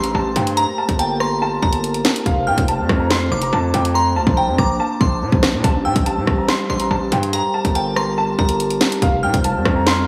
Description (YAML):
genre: hip hop, drill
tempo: 142 BPM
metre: 4/4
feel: half-time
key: unclear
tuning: A4 = 441 Hz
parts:
  - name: dark baby grand piano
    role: melody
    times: 0.0-10.1 s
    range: F5 to C6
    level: -24 LUFS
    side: equal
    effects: lush chorus, low-pass filter, diffuse ambient delay
  - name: glassy synth bell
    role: second line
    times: 0.0-10.0 s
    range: A5 to F6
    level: -28 LUFS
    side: equal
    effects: chorus, diffuse ambient delay
  - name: glass harmonica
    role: sustained chords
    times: 0.0-10.1 s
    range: G3 to C5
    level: -26 LUFS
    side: equal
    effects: none
  - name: distorted 808-style bass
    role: bass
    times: 0.0-10.1 s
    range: F1 to Bb2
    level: -24 LUFS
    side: equal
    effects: distortion
  - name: drill drum kit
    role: drums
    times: 0.0-10.0 s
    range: hi-hat, kick drum, rim click, snare drum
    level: -22 LUFS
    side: equal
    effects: none
room: wet lush hall reverb, RT60 1.9 s, digital ambience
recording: dreamy mix soaked in reverb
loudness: -18 LUFS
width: mono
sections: 0.0-10.1 A section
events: hi-hats muted 4.0-5.6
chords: 0.0 Am7; 0.6 Gmadd9; 2.3 F; 4.0 Bbadd9; 5.6 Am7; 7.3 Gmadd9; 9.0 F